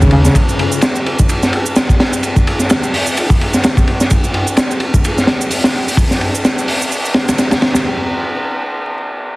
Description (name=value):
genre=breakbeat, breaks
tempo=128 BPM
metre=4/4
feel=swing 58% on 16ths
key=none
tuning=none
part: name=crunchy breakbeat drum kit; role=drums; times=0.0-7.9 s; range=hi-hat, kick drum, ride cymbal, snare drum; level=-12 LUFS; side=equal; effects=none
part: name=shaker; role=drums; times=0.0-7.8 s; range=none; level=-26 LUFS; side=right 4 dB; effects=none
room=studio ambience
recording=heavily compressed radio sound, multiband compression, vinyl crackle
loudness=-12 LUFS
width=side -21 dB against mid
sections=0.0-7.9 A section; 7.9-9.4 B section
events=none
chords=none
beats=| 0.35 0.82 1.29 1.76 | 2.23 2.70 3.17 3.63 | 4.10 4.57 5.04 5.51 | 5.98 6.45 6.92 7.38